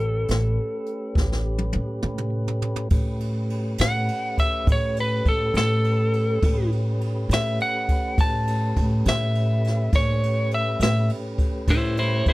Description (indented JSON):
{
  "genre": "slow blues",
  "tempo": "68 BPM (dotted quarters)",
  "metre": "12/8",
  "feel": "straight",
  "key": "A mixolydian",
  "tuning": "A4 = 440 Hz",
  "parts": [
    { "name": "lightly driven lead guitar", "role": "melody", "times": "0.0-12.3 s", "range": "E4 to A5", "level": "-25 LUFS", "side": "equal", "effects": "none" },
    { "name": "tonewheel organ", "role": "sustained chords", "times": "0.0-12.3 s", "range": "A3 to C5", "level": "-32 LUFS", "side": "equal", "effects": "slow rotary speaker, overdrive" },
    { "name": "upright bass", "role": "bass", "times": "0.0-12.3 s", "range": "A1 to A2", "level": "-24 LUFS", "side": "equal", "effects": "none" },
    { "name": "jazz brush drum kit", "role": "drums", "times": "0.3-12.3 s", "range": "hi-hat, kick drum, ride cymbal, snare drum, toms", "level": "-24 LUFS", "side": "equal", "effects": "none" }
  ],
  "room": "little or no reverb",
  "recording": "dry, close 1970s-style studio recording",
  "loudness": "-20 LUFS",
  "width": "side -19 dB against mid",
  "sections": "0.0-2.9 A section; 2.9-12.3 B section",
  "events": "drum fill 1.2-2.9; lead electric guitar solo 2.9-12.3",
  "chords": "0.0 A9",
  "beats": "0.28 1.16 2.04 | 2.92 3.79 4.67 5.55 | 6.43 7.30 8.18 9.06 | 9.93 10.81 11.68"
}